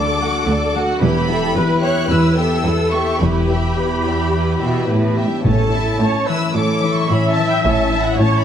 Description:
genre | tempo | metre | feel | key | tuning
cinematic, heroic adventure film score | 109 BPM | 4/4 | straight | unclear | A4 = 439 Hz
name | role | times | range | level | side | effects
warm symphonic violin section | melody | 0.0-8.4 s | F#5 to F#6 | -24 LUFS | left 2 dB | none
warm symphonic violin section | second line | 0.0-8.4 s | C#4 to F#5 | -22 LUFS | left 1 dB | none
rich studio viola section | accompaniment | 0.0-8.4 s | G4 to E5 | -22 LUFS | right 1 dB | none
concert harp | arpeggios | 0.0-8.4 s | A2 to F#5 | -22 LUFS | left 6 dB | none
rich symphonic cello section | bass | 0.0-8.4 s | D2 to B2 | -20 LUFS | right 2 dB | none
rich symphonic double bass section | bass | 1.0-8.1 s | E1 to A1 | -22 LUFS | right 2 dB | none
timpani | percussion | 5.4-6.2 s | A2 | -23 LUFS | equal | none
room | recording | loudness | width
wet recital hall reverb, RT60 1.7 s | dark, warm production | -14 LUFS | side -9 dB against mid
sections
0.0-8.4 A section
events
none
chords
0.0 D; 1.0 Em; 5.4 A

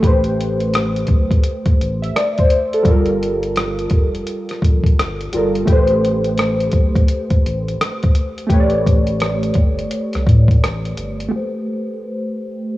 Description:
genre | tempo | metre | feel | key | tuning
lo-fi hip hop | 85 BPM | 4/4 | swing 64% on 16ths | A minor | A4 = 440 Hz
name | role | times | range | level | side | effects
warm analog keys | accompaniment | 0.0-12.8 s | G3 to E5 | -19 LUFS | equal | chorus, phaser, cassette tape, low-pass filter
soft dub sub bass | bass | 0.0-11.3 s | F1 to A2 | -21 LUFS | equal | none
lo-fi sampler-style drum kit | drums | 0.0-11.3 s | hi-hat, kick drum, rim click | -16 LUFS | equal | vintage 12-bit sampler grit
room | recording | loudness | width
light reverb, digital ambience | home recording on cassette, small room ambience | -15 LUFS | side -16 dB against mid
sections
0.0-11.3 A section; 11.3-12.8 B section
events
filter sweep on synth keys 11.3-12.8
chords
0.0 Am9; 2.9 Gm9; 5.7 Am9

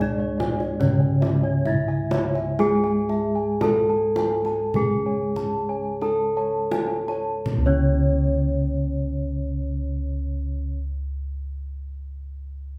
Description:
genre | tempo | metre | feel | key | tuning
Javanese gamelan | 39-78 BPM | 4/4 | straight | C# pelog | A4 = 439 Hz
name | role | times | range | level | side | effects
gamelan-type bronze metallophone | melody | 0.0-10.8 s | C#4 to A4 | -28 LUFS | equal | none
gamelan-type bronze metallophone | accompaniment | 0.0-10.8 s | C#3 to G#3 | -28 LUFS | equal | none
gamelan-type bossed gongs | arpeggios | 0.0-10.8 s | C#5 to A5 | -36 LUFS | equal | none
gamelan-type bronze metallophone | arpeggios | 0.0-10.8 s | C#5 to A5 | -33 LUFS | equal | none
gamelan-type bossed gongs | bass | 0.0-10.7 s | C#2 to G#4 | -31 LUFS | equal | none
kendang | percussion | 0.0-8.2 s | none | -32 LUFS | equal | none
room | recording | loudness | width
wet large studio reverb, RT60 0.8 s | band playing live in one room | -23 LUFS | mono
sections
0.0-7.5 A section; 7.5-12.8 B section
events
slowing down 0.0-7.5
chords
none

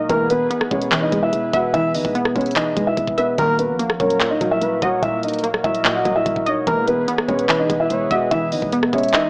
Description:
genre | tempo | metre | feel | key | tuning
hip hop, trap | 146 BPM | 4/4 | half-time | unclear | A4 = 436 Hz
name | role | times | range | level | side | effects
dark grand piano | melody | 0.0-9.3 s | Bb3 to Gb5 | -20 LUFS | equal | none
warbly dusty pluck | accompaniment | 0.0-9.3 s | Bb2 to E5 | -23 LUFS | equal | chorus
warm analog pad | sustained chords | 0.0-9.3 s | E3 to B4 | -27 LUFS | equal | chorus
growling 808-style bass | bass | 0.0-9.1 s | Eb1 to Bb1 | -30 LUFS | equal | none
trap drum kit | drums | 0.1-9.2 s | handclaps, hi-hat, kick drum, rim click | -22 LUFS | equal | none
gliding portamento lead | second line | 4.0-9.3 s | Bb4 to E5 | -24 LUFS | equal | chorus, phaser, digital delay
room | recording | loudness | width
moderate lush hall reverb, RT60 1.9 s | small speaker sound | -16 LUFS | side -32 dB against mid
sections
0.0-9.3 A section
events
kick muted 9.1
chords
0.1 E; 3.4 Ebm; 6.7 E

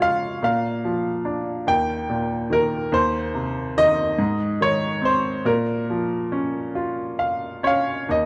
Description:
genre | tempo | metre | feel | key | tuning
classical, lyrical solo piano | 47 BPM (dotted quarters) | 6/8 | uneven beats, rubato | Bb dorian | A4 = 440 Hz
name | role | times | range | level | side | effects
clear baby grand piano | solo | 0.0-8.3 s | Eb2 to G5 | -22 LUFS | equal | none
room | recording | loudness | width
moderate concert hall reverb, RT60 2.1 s | dark, warm production | -23 LUFS | mono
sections
0.0-8.1 A section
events
grand piano fill 6.8-8.1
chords
0.4 Bb; 1.7 Eb; 2.9 Cm/Eb; 4.2 Ab; 5.5 Bbm

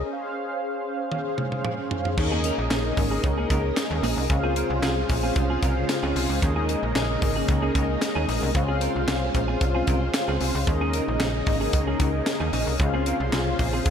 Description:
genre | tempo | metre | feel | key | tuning
early-eighties boogie funk | 113 BPM | 4/4 | straight | Db major | A4 = 440 Hz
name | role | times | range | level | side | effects
mellow synth brass | accompaniment | 0.0-13.9 s | Db4 to F5 | -28 LUFS | left 2 dB | chorus
slap-like FM bass | bass | 0.0-13.9 s | Ab1 to Eb2 | -27 LUFS | equal | none
tight funk drum kit | drums | 1.1-13.9 s | crash cymbal, handclaps, hi-hat, kick drum, snare drum, toms | -26 LUFS | equal | none
string machine, violins | sustained chords | 2.2-13.9 s | Db3 to C5 | -30 LUFS | equal | phaser, ensemble chorus
clean electric guitar | riff | 2.2-13.9 s | Bb3 to Bb4 | -32 LUFS | right 4 dB | wide subtle chorus
room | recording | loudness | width
moderate lush hall reverb, RT60 1.9 s, small room ambience | dreamy mix soaked in reverb | -22 LUFS | side -8 dB against mid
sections
0.0-2.2 A section; 2.2-13.9 B section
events
break 0.1-2.2; drum fill 1.1-2.2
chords
0.1 Dbmaj7; 2.2 Eb7sus4; 4.3 Dbmaj7; 6.4 Eb7sus4; 8.5 Dbmaj7; 10.7 Eb7sus4; 12.8 Dbmaj7

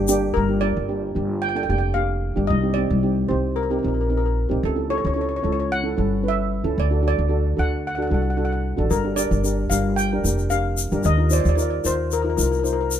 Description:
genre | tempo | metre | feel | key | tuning
calypso | 112 BPM | 4/4 | straight | G minor | A4 = 440 Hz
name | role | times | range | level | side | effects
upright bass | bass | 0.0-13.0 s | F1 to Eb2 | -22 LUFS | equal | none
steel pan | accompaniment | 0.1-12.9 s | Bb3 to C5 | -25 LUFS | right 2 dB | none
egg shaker | percussion | 0.1-0.2, 8.9-13.0 s | none | -28 LUFS | left 6 dB | none
steel pan | melody | 0.3-12.9 s | A4 to G5 | -26 LUFS | left 1 dB | none
room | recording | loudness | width
light reverb | minimal, uncompressed stereo recording | -19 LUFS | side -10 dB against mid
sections
0.4-13.0 A section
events
none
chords
0.4 Gm; 2.5 Cm7; 4.6 A7/C#; 6.8 D7; 8.9 Gm7; 11.1 Ebsus2

